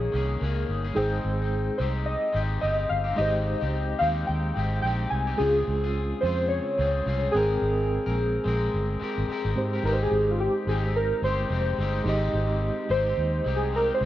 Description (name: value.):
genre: indie pop, bedroom pop.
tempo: 108 BPM.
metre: 4/4.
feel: swing 60% on 16ths.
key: Ab major.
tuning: A4 = 440 Hz.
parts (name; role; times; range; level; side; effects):
warbly lo-fi synth keys; melody; 0.0-14.0 s; F4 to Ab5; -27 LUFS; equal; lush chorus, tape echo.
electric guitar at the edge of break-up; accompaniment; 0.0-14.1 s; Db3 to Bb4; -33 LUFS; left 5 dB; wide subtle chorus, warbly pitch drift.
reed electric piano; accompaniment; 0.0-14.1 s; Ab3 to G5; -33 LUFS; right 2 dB; fast tremolo.
vintage muted fingered electric bass; bass; 0.0-14.1 s; F1 to Ab2; -27 LUFS; equal; none.
room: light reverb.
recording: none.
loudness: -23 LUFS.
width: side -13 dB against mid.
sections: 0.0-9.8 A section; 9.8-14.1 B section.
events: synth keys solo 9.8-14.1.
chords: 0.0 Eb7sus4; 5.4 Dbmaj7; 7.3 Abmaj9; 9.8 Abmaj7.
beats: 0.41 | 0.96 1.52 2.07 2.63 | 3.18 3.73 4.29 4.84 | 5.40 5.95 6.51 7.06 | 7.62 8.17 8.73 9.29 | 9.84 10.40 10.95 11.51 | 12.06 12.62 13.18 13.73.